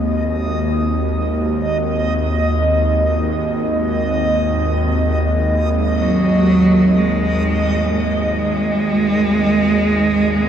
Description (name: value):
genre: dark ambient drone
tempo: free time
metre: none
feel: none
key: unclear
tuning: A4 = 439 Hz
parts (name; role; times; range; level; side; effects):
- bowed-like drone; drone; 0.0-10.5 s; G#1 to D#2; -18 LUFS; equal; built-in reverb
- backwards swelling texture; texture; 0.0-10.5 s; D#5; -22 LUFS; equal; built-in reverb
- rich cello; melody; 6.0-10.5 s; F#3 to G#3; -15 LUFS; right 2 dB; diffuse ambient delay
room: wet huge ambient reverb, RT60 9.0 s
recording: dreamy mix soaked in reverb, cassette tape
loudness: -14 LUFS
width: side -9 dB against mid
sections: 0.0-10.5 A section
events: fade-out on synth texture 0.0-10.5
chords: 0.0 G#5